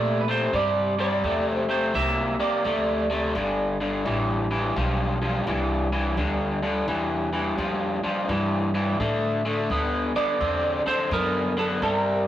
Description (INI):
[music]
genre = blues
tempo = 85 BPM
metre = 4/4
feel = swing 64% on 8ths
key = unclear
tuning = A4 = 440 Hz
[part]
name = lightly driven lead guitar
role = melody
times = 0.0-4.5, 10.2-12.3 s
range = A4 to E5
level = -26 LUFS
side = right 2 dB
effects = none
[part]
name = crunchy overdriven guitar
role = riff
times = 0.0-12.2 s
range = G2 to C4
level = -24 LUFS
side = left 1 dB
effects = none
[part]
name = upright bass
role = bass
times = 0.0-12.3 s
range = G1 to Bb2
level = -30 LUFS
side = equal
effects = none
[sound]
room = wet stone room reverb, RT60 1.2 s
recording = rough rehearsal-room recording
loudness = -22 LUFS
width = side -12 dB against mid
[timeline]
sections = 0.0-12.3 A section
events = none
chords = 0.0 C9; 3.3 G9; 9.0 D9